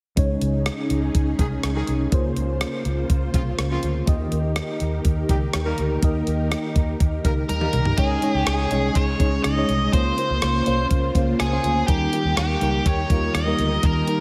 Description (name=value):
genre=1980s-style pop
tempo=123 BPM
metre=4/4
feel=straight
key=Db lydian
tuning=A4 = 440 Hz
part: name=FM electric piano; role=accompaniment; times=0.2-14.2 s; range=Db3 to Eb5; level=-28 LUFS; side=equal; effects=phaser
part: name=string machine, violas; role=sustained chords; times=0.2-14.2 s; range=Db3 to C5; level=-31 LUFS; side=equal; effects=ensemble chorus
part: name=vintage muted fingered electric bass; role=bass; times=0.2-14.0 s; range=C2 to Eb2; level=-27 LUFS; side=equal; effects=none
part: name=clean 12-bit digital drum machine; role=drums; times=0.2-14.2 s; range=hi-hat, kick drum, rim click, toms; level=-26 LUFS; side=equal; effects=none
part: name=mellow horn section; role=stabs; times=1.4-7.8 s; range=Db3 to Bb4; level=-35 LUFS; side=equal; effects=none
part: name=biting lead guitar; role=melody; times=7.5-14.2 s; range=G4 to Eb5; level=-27 LUFS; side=equal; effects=overdrive, tape echo
room=wet lush hall reverb, RT60 1.9 s, digital ambience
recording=dreamy mix soaked in reverb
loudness=-22 LUFS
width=mono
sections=0.2-8.0 A section; 8.0-14.2 B section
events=drum fill 7.5-8.0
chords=0.2 Dbsus2; 2.1 Bbmadd9/Db; 4.1 Eb; 8.0 Dbsus2; 9.9 Bbmadd9; 11.9 Eb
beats=| 0.17 0.66 1.15 1.64 | 2.12 2.61 3.10 3.59 | 4.07 4.56 5.05 5.54 | 6.03 6.51 7.00 7.49 | 7.98 8.46 8.95 9.44 | 9.93 10.42 10.90 11.39 | 11.88 12.37 12.86 13.34 | 13.83